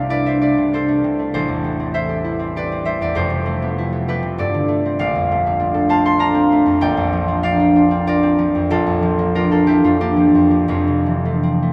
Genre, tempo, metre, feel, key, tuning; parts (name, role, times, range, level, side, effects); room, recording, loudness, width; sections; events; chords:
classical, solo harp piece; 81-101 BPM; 3/4; rubato; A4 = 442 Hz
concert harp; solo; 0.0-11.7 s; F1 to C6; -17 LUFS; equal
wet huge ambient reverb, RT60 8.3 s; in a vast, echoing space; -17 LUFS; mono
0.0-11.7 A section
0.0 Dm9/C; 1.3 Am7; 3.1 Fmaj7#11; 4.4 Gsus24; 5.0 Bbmaj9; 6.8 C9sus4/Bb; 8.7 Bbmaj7; 10.7 Fmaj7